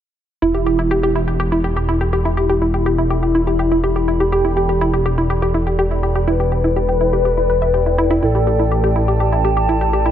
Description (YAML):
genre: techno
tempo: 123 BPM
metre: 4/4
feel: straight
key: E minor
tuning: A4 = 441 Hz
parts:
  - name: analog synth brass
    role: melody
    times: 0.4-9.1 s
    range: E4 to B4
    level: -20 LUFS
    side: left 3 dB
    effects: chorus, digital delay
  - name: analog pluck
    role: arpeggios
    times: 0.4-10.1 s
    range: E4 to E5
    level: -19 LUFS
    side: equal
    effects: chorus, digital delay
  - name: swelling detuned saw bass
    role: bass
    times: 0.4-10.1 s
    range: E1 to A1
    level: -19 LUFS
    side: equal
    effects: none
  - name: warbly tape-like pad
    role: texture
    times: 1.3-10.1 s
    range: A4 to B5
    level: -25 LUFS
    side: right 2 dB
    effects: chorus, built-in reverb
room: light reverb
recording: nothing above 7.9 kHz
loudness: -14 LUFS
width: side -10 dB against mid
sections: 0.4-10.1 A section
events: filter sweep on analog polysynth 0.4-10.1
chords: 0.4 Em; 8.2 A5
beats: | 0.42 0.91 1.40 1.89 | 2.37 2.86 3.35 3.84 | 4.32 4.81 5.30 5.79 | 6.28 6.76 7.25 7.74 | 8.23 8.71 9.20 9.69